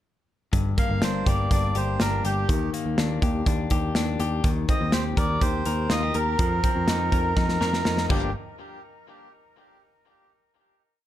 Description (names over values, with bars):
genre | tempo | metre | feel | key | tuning
jangly indie pop | 123 BPM | 4/4 | straight | G minor | A4 = 440 Hz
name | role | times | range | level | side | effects
direct-recorded clean electric guitar | arpeggios | 0.5-8.3 s | G2 to Bb4 | -29 LUFS | left 6 dB | tube saturation, digital delay
picked electric bass | bass | 0.5-8.3 s | G1 to F2 | -27 LUFS | equal | none
modern studio drum kit | drums | 0.5-8.2 s | crash cymbal, hi-hat, kick drum, snare drum | -25 LUFS | equal | none
melodica | melody | 0.8-8.3 s | G4 to F5 | -29 LUFS | right 3 dB | none
room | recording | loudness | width
light reverb | dark, warm production | -21 LUFS | side -12 dB against mid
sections
0.5-8.3 verse; 8.3-10.3 final hit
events
drum fill 7.4-8.3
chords
0.5 Gm; 2.5 Ebmaj7; 4.4 Cm7/Eb; 6.4 F7sus4; 8.1 Gm7; 8.3 N.C.